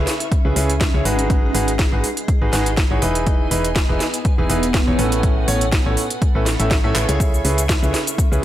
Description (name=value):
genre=piano house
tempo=122 BPM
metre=4/4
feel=swing 54% on 16ths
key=unclear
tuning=A4 = 440 Hz
part: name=clear concert grand piano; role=riff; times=0.0-8.4 s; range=A2 to E5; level=-22 LUFS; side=right 1 dB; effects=sidechain pumping, tape echo
part: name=solid FM bass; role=bass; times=0.0-8.4 s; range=E1 to A2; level=-22 LUFS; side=equal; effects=sidechain pumping
part: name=granular cloud pad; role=texture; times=0.0-8.4 s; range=B3 to C#6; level=-26 LUFS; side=right 1 dB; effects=built-in reverb, sidechain pumping
part: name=garage drum kit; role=drums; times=0.1-8.4 s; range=cabasa, handclaps, hi-hat, snare drum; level=-23 LUFS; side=right 1 dB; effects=none
part: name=electronic kick drum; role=drums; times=0.3-8.3 s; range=none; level=-18 LUFS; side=equal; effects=overdrive
room=little or no reverb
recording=none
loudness=-16 LUFS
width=side -13 dB against mid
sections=0.0-8.4 A section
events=drum fill 7.0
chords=0.0 G#m7; 3.0 Emaj7; 5.2 A; 7.2 G#m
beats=0.32 0.81 | 1.30 1.79 2.28 2.77 | 3.27 3.76 4.25 4.74 | 5.23 5.73 6.22 6.71 | 7.20 7.69 8.19